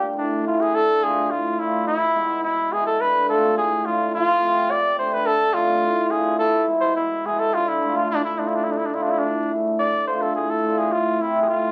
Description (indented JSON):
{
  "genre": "klezmer",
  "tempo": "106 BPM",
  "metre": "2/4",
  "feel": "straight",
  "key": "D dorian sharp4",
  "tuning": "A4 = 439 Hz",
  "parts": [
    { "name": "warm cornet", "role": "melody", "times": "0.0-11.7 s", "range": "D4 to D5", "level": "-23 LUFS", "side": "equal", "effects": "none" },
    { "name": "cimbalom", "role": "accompaniment", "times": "0.0-11.7 s", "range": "A2 to G#4", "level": "-25 LUFS", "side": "equal", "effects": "none" }
  ],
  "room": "wet studio ambience, RT60 0.5 s",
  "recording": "very old 78 rpm record, vinyl crackle",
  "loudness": "-21 LUFS",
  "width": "mono",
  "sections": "0.7-9.8 A section; 9.8-11.7 B section",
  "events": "none",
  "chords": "0.1 A; 0.7 Dm; 1.9 E; 3.0 Dm; 4.1 F; 5.3 Dm; 6.4 E; 7.5 Dm; 10.9 Am",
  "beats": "0.14 | 0.71 1.28 | 1.85 2.42 | 3.00 3.56 | 4.13 4.70 | 5.27 5.84 | 6.40 6.97 | 7.54 8.10 | 8.67 9.23 | 9.80 10.36 | 10.93 11.49"
}